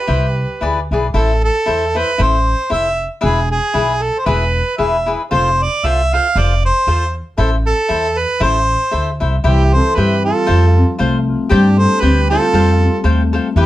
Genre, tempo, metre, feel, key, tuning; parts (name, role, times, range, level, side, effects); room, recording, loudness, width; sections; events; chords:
mexican folk, mariachi; 116 BPM; 2/4; swing 55% on 8ths; A harmonic minor, C major from 9.5 s; A4 = 440 Hz
warm harmonica; melody; 0.0-13.7 s; G4 to F5; -17 LUFS; right 2 dB
dark trumpet; second line; 0.0-0.9, 9.5-13.7 s; D4 to A4; -23 LUFS; right 4 dB
cavaquinho; accompaniment; 0.1-13.7 s; E4 to G5; -20 LUFS; left 4 dB
upright bass; bass; 0.1-13.7 s; E1 to G2; -16 LUFS; equal
Celtic harp; arpeggios; 9.5-13.7 s; E3 to G4; -18 LUFS; left 4 dB
light reverb; dark, warm production; -12 LUFS; side -15 dB against mid
0.0-1.1 A section; 1.1-9.5 B section; 9.5-13.7 A section
0.1 C; 0.6 E7; 1.1 Am; 3.2 E; 5.3 F; 7.4 Am; 9.5 C; 10.5 F; 11.5 Gsus4; 12.5 Fadd9